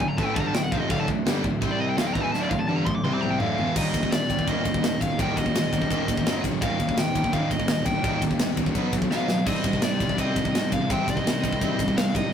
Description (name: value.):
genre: heavy metal.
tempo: 168 BPM.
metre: 4/4.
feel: straight.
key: unclear.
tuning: A4 = 438 Hz.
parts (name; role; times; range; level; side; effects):
high-gain lead guitar; melody; 0.0-12.3 s; D5 to D6; -29 LUFS; left 1 dB; distortion.
distorted electric guitar; riff; 0.0-12.3 s; D2 to C4; -31 LUFS; right 6 dB; overdrive.
fuzz guitar; riff; 0.0-12.3 s; D2 to C5; -32 LUFS; equal; distortion.
scooped high-gain guitar; riff; 0.0-12.3 s; D2 to C4; -31 LUFS; left 4 dB; distortion.
fuzz picked electric bass; bass; 0.0-12.3 s; D1 to C2; -31 LUFS; equal; overdrive.
modern studio drum kit; drums; 0.0-12.2 s; china cymbal, crash cymbal, kick drum, ride cymbal, snare drum, toms; -26 LUFS; equal; none.
room: moderate studio reverb, RT60 0.6 s.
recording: rough rehearsal-room recording, warm saturation.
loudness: -22 LUFS.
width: side -8 dB against mid.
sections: 0.0-3.8 A section; 3.8-12.3 B section.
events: lead electric guitar solo 0.0-3.8; drum fill 2.3-3.8, 9.1-9.5.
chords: 0.0 Dm; 1.6 C5; 2.0 D5; 3.0 C5; 3.4 Dm; 3.8 Eb; 6.3 F#5; 6.6 Eb; 8.8 B5; 9.5 Cm.